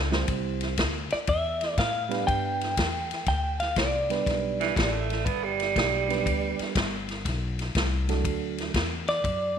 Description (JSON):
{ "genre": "electric blues shuffle", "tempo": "121 BPM", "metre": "4/4", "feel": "swing 67% on 8ths", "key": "G major", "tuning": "A4 = 440 Hz", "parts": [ { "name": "growling tenor saxophone", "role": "second line", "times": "0.0-0.2, 4.6-6.9 s", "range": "D3 to B3", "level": "-28 LUFS", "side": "right 8 dB", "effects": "none" }, { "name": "upright bass", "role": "bass", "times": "0.0-9.6 s", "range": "G1 to A2", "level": "-31 LUFS", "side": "left 2 dB", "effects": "none" }, { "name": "reed electric piano", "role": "accompaniment", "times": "0.1-8.7 s", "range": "F#3 to C5", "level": "-32 LUFS", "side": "right 10 dB", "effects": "none" }, { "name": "swinging big-band drum kit", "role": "drums", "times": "0.1-9.4 s", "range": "kick drum, ride cymbal, snare drum", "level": "-29 LUFS", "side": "left 1 dB", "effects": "none" }, { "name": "clean electric guitar", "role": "melody", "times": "1.1-5.7, 9.1-9.6 s", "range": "D5 to G5", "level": "-28 LUFS", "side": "equal", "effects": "none" } ], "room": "moderate echo chamber reverb, RT60 1.5 s, studio ambience", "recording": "1960s-style stereo", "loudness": "-24 LUFS", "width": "side -8 dB against mid", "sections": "0.0-9.6 A section", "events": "drum fill 0.0", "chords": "0.3 C; 2.3 G; 8.3 D" }